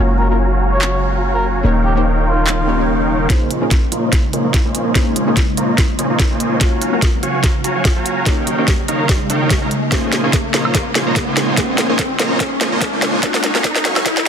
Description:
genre	future bass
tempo	145 BPM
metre	4/4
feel	swing 54% on 16ths, half-time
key	Bb minor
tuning	A4 = 436 Hz
part	soft round pluck	accompaniment	0.0-13.6 s	Bb3 to Db5	-24 LUFS	left 3 dB	wide subtle chorus, sidechain pumping, ping-pong delay
part	ethereal airy pad	sustained chords	0.0-14.3 s	Db3 to F5	-24 LUFS	equal	ensemble chorus, built-in reverb, phaser, sidechain pumping
part	dense compressed supersaw	riff	0.0-14.2 s	Bb3 to Db6	-19 LUFS	right 1 dB	sidechain pumping, low-pass filter
part	warm 808-style bass	bass	0.0-14.2 s	Eb1 to Eb2	-19 LUFS	equal	tube saturation, sidechain pumping, high-pass filter
part	trumpet with cup mute	melody	0.2-2.8 s	F4 to Db5	-23 LUFS	left 1 dB	sidechain pumping, ping-pong delay
part	trap drum kit	drums	0.8-14.2 s	handclaps, hi-hat, snare drum, woodblock	-20 LUFS	equal	high-pass filter on snare, high-pass filter on hats, high-pass filter on perc
part	electronic kick drum	drums	3.3-14.1 s	none	-16 LUFS	equal	none
part	riser	sound effects	6.9-14.3 s	none	-24 LUFS	equal	none
room	light reverb, digital ambience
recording	dense, heavily limited modern master, high-pass filter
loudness	-13 LUFS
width	side -8 dB against mid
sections	0.0-3.3 A section; 3.3-14.3 B section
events	build-up 3.3-14.3; drum fill 3.3-14.3; filter sweep on supersaw synth 3.3-14.3; filter sweep on ambient pad 3.3-14.3; filter sweep 3.3-14.3; riser 6.9-14.3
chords	0.0 Gbmaj7; 1.6 Eb7; 3.3 Bbm11; 6.6 Gbmaj7; 8.3 Eb7; 9.9 Bbm11; 13.2 Gbmaj7

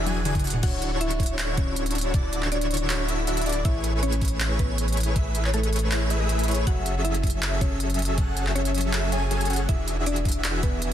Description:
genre	future bass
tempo	159 BPM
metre	4/4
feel	half-time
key	A major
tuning	A4 = 439 Hz
part	airy dreamy lead	arpeggios	0.0-10.9 s	C#5 to G#5	-34 LUFS	left 1 dB	chorus, sidechain pumping
part	supersaw chords	riff	0.0-10.9 s	D3 to G#5	-29 LUFS	equal	sidechain pumping
part	saturated sub bass	bass	0.0-10.9 s	D1 to A1	-27 LUFS	equal	sidechain pumping
part	trap drum kit	drums	0.1-10.9 s	crash cymbal, handclaps, hi-hat, toms	-30 LUFS	equal	none
part	electronic kick drum	drums	0.4-10.7 s	none	-24 LUFS	equal	none
part	mallet-like synth pluck	melody	0.6-10.8 s	A3 to F#5	-33 LUFS	left 2 dB	chorus, sidechain pumping, tape echo
room	light reverb, digital ambience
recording	dense, heavily limited modern master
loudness	-22 LUFS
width	side -10 dB against mid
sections	0.0-10.9 A section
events	drum fill 0.1-0.6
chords	0.0 E7; 0.6 Dmaj9; 3.7 Amaj9; 6.7 F#m7; 9.7 E7

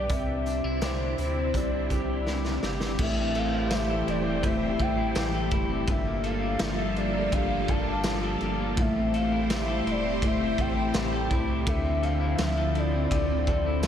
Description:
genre	dream pop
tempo	83 BPM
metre	4/4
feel	straight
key	unclear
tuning	A4 = 440 Hz
part	warbly nostalgic lead	melody	0.0-13.9 s	C5 to A5	-32 LUFS	left 2 dB	chorus, diffuse ambient delay
part	string machine, full ensemble	sustained chords	0.0-13.9 s	C3 to C5	-32 LUFS	equal	ensemble chorus
part	electric guitar at the edge of break-up	arpeggios	0.0-13.9 s	G2 to A4	-30 LUFS	left 1 dB	lush chorus, diffuse ambient delay
part	warm sub bass	bass	0.0-13.9 s	E1 to D2	-32 LUFS	equal	none
part	raw garage drum kit	drums	0.1-13.9 s	crash cymbal, hi-hat, kick drum, ride cymbal, snare drum, tambourine	-31 LUFS	equal	none
room	moderate lush hall reverb, RT60 2.7 s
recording	dreamy mix soaked in reverb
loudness	-24 LUFS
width	side -9 dB against mid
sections	0.0-3.0 A section; 3.0-13.9 B section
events	drum fill 2.3-3.0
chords	0.1 Cadd9; 3.0 Am7; 5.9 Gm9; 8.8 Am7; 11.7 Dm9

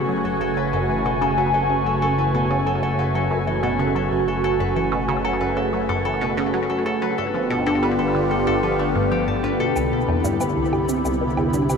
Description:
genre	ambient, sequencer-driven space music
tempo	93 BPM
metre	4/4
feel	straight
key	unclear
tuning	A4 = 440 Hz
part	phased analog pad	sustained chords	0.0-11.8 s	C3 to G#5	-21 LUFS	equal	phaser, chorus, shimmer reverb
part	concert harp	arpeggios	0.0-11.8 s	A3 to A5	-27 LUFS	left 2 dB	auto-pan, ping-pong delay, shimmer reverb
part	resonant blip pluck	riff	0.0-11.8 s	C2 to G3	-25 LUFS	equal	phaser, ping-pong delay, shimmer reverb
part	fat analog bass	bass	0.0-11.8 s	F#1 to C2	-32 LUFS	equal	none
part	cabasa and woodblock	percussion	9.8-11.8 s	none	-32 LUFS	equal	ping-pong delay
part	pulsing gated texture	texture	9.8-11.8 s	B3 to B5	-30 LUFS	left 2 dB	chorus, built-in reverb, shimmer reverb
room	wet huge ambient reverb, RT60 8.8 s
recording	none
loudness	-19 LUFS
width	side -6 dB against mid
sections	0.0-9.8 A section; 9.8-11.8 B section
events	none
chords	0.0 F#madd9; 7.2 G7; 9.8 Cadd9

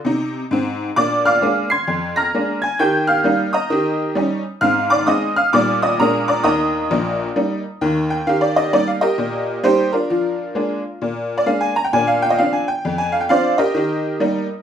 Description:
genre	jazz, stride piano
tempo	131 BPM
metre	4/4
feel	swing 63% on 8ths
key	Eb major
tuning	A4 = 440 Hz
part	tack piano	solo	0.0-14.6 s	Bb1 to C7	-16 LUFS	equal	none
room	wet studio reverb, RT60 0.7 s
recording	rough home demo mix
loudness	-16 LUFS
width	side -8 dB against mid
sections	0.0-8.3 A section; 8.3-14.6 A section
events	none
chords	0.0 Eb5; 1.0 Bb7; 2.8 Eb; 3.7 Eb7; 4.6 Ab6; 5.5 Eb/Bb; 6.0 Bb7; 6.5 Eb; 10.1 Bb7/F; 11.9 Bbadd9; 13.8 Eb

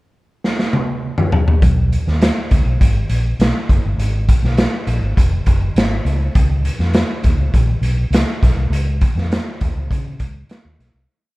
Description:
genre	uptempo 1960s-style soul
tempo	101 BPM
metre	4/4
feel	straight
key	unclear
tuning	A4 = 439 Hz
part	raw garage drum kit	drums	0.4-10.9 s	hi-hat, kick drum, snare drum, toms	-16 LUFS	equal	none
part	vintage muted fingered electric bass	bass	1.6-11.1 s	F1 to Db3	-18 LUFS	equal	none
room	little or no reverb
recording	none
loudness	-14 LUFS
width	side -20 dB against mid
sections	0.0-1.6 pickup bar; 1.6-11.1 A section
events	drum fill 0.4-1.6; fade-out 8.7-11.1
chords	none

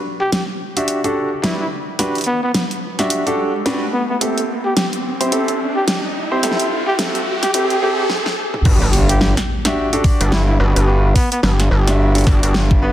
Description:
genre	glitch hop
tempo	108 BPM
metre	4/4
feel	swing 59% on 16ths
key	unclear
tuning	A4 = 437 Hz
part	riser and impact	sound effects	1.2-10.9 s	none	-24 LUFS	equal	none
part	breathy trumpet	melody	0.2-12.9 s	B3 to G4	-23 LUFS	equal	dub echo
part	dubstep drum kit	drums	0.3-12.7 s	crash cymbal, hi-hat, snare drum, toms	-21 LUFS	equal	none
part	clear concert grand piano	stabs	0.8-12.9 s	C4 to E5	-21 LUFS	right 1 dB	sidechain pumping, low-pass filter, dub echo
part	gritty driven synth bass	bass	8.7-12.9 s	G1	-14 LUFS	equal	tube saturation
part	electronic kick drum	drums	8.7-12.8 s	none	-14 LUFS	equal	none
room	moderate lush hall reverb, RT60 1.8 s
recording	dense, heavily limited modern master, high-pass filter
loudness	-15 LUFS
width	side -12 dB against mid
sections	0.0-8.7 A section; 8.7-12.9 B section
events	build-up 0.0-8.7; riser 1.2-8.1; drum fill 8.1-8.7; stop 8.1-8.7; drop 8.7-12.9; impact 8.7-10.9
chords	0.0 Gmaj7; 4.2 Am7; 8.7 Gmaj7

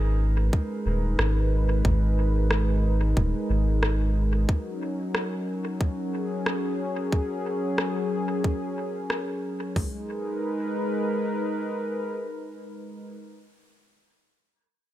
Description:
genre	ambient dub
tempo	91 BPM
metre	4/4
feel	swing 58% on 16ths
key	G# minor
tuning	A4 = 440 Hz
part	warm analog pad	sustained chords	0.0-13.2 s	F#3 to B4	-29 LUFS	equal	chorus
part	soft dub sub bass	bass	0.0-4.5 s	D#1 to G#1	-23 LUFS	equal	tube saturation
part	organic electronic drum kit	drums	0.5-9.9 s	hi-hat, kick drum, toms	-25 LUFS	equal	none
part	electronic rim click	drums	1.2-9.3 s	none	-30 LUFS	equal	dub echo
room	light reverb, digital ambience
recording	none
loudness	-24 LUFS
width	side -14 dB against mid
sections	0.0-9.8 A section; 9.8-12.4 B section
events	none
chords	0.0 G#madd9; 4.5 F#6; 9.8 G#madd9

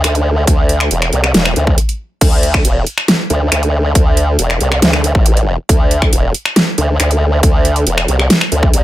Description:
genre	heavy wobble dubstep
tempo	138 BPM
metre	4/4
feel	half-time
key	unclear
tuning	A4 = 440 Hz
part	formant-sweep wobble bass	bass	0.0-8.8 s	E1 to D2	-13 LUFS	equal	chorus, overdrive
part	dubstep drum kit	drums	0.0-8.8 s	crash cymbal, finger snaps, hi-hat, snare drum	-14 LUFS	equal	overdrive
part	electronic kick drum	drums	0.5-8.7 s	none	-12 LUFS	equal	overdrive
room	little or no reverb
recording	none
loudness	-10 LUFS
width	side -14 dB against mid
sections	0.0-8.8 A section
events	break 1.8-2.2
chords	none

